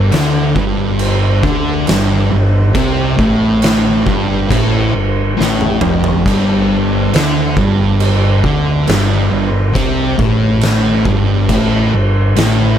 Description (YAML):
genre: stoner and doom metal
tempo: 69 BPM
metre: 4/4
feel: straight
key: unclear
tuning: A4 = 439 Hz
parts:
  - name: thick fuzz guitar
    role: riff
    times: 0.0-12.8 s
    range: F2 to D3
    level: -16 LUFS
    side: left 5 dB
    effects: distortion
  - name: thick fuzz guitar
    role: riff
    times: 0.0-12.8 s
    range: F2 to D3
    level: -16 LUFS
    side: right 5 dB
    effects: distortion
  - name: growling fingered electric bass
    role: bass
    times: 0.0-12.8 s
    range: F1 to D2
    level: -20 LUFS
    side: equal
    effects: overdrive
  - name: oversized low-tuned drum kit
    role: drums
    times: 0.1-12.6 s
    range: crash cymbal, kick drum, snare drum, toms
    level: -17 LUFS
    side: right 1 dB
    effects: none
room: little or no reverb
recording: none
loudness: -11 LUFS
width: side -9 dB against mid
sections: 0.0-12.8 A section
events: drum fill 5.4-6.3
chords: 0.0 G5